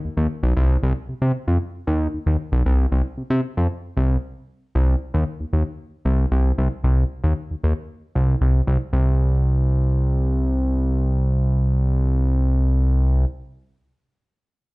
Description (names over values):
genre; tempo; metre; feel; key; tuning
funk; 115 BPM; 4/4; straight; C minor; A4 = 440 Hz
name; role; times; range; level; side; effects
fat analog bass; solo; 0.0-13.3 s; B1 to C3; -18 LUFS; equal; none
room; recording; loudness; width
light reverb; dark, warm production, nothing above 10.6 kHz; -18 LUFS; side -23 dB against mid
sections
0.0-4.8 A section; 4.8-8.9 B section; 8.9-13.1 C section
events
stop 4.2-4.8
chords
none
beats
0.04 | 0.57 1.09 1.61 2.14 | 2.66 3.18 3.70 4.23 | 4.75 5.27 5.79 6.32 | 6.84 7.36 7.89 8.41 | 8.93 9.46 9.98 10.50 | 11.02 11.55 12.07 12.59